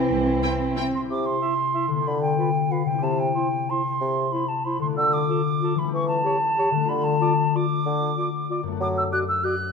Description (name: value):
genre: classical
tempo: 170-204 BPM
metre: 3/4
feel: rubato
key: C major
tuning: A4 = 445 Hz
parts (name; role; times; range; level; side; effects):
- dark clarinet; second line; 0.0-9.6 s; C4 to G4; -31 LUFS; right 1 dB; none
- dark cor anglais; second line; 0.0-9.6 s; A4 to G5; -35 LUFS; right 3 dB; none
- mellow hollow silver concert flute; second line; 0.0-9.7 s; E4 to F#6; -25 LUFS; right 1 dB; none
- rich symphonic violin section; second line; 0.0-0.7 s; E4; -37 LUFS; right 1 dB; none
- warm bassoon; accompaniment; 0.0-9.1 s; C3 to F#3; -30 LUFS; right 2 dB; none
- dark French horn section; sustained chords; 0.0-0.9 s; C4 to E4; -28 LUFS; right 1 dB; none
- concert harp; arpeggios; 0.0-9.7 s; F#2 to G4; -26 LUFS; left 11 dB; none
- rich symphonic cello section; bass; 0.0-0.9 s; C4; -29 LUFS; right 3 dB; none
- clear symphonic violin section; melody; 0.4-0.9 s; G5; -35 LUFS; left 3 dB; none
- rich symphonic viola section; accompaniment; 0.4-0.8 s; C4 to E4; -37 LUFS; right 4 dB; none
room: moderate recital hall reverb, RT60 1.7 s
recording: none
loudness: -21 LUFS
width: side -5 dB against mid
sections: 0.0-1.1 A section; 1.1-9.7 A section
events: none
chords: 0.0 C; 5.0 Dm; 5.9 A7/E; 6.9 Dm; 8.8 D/F#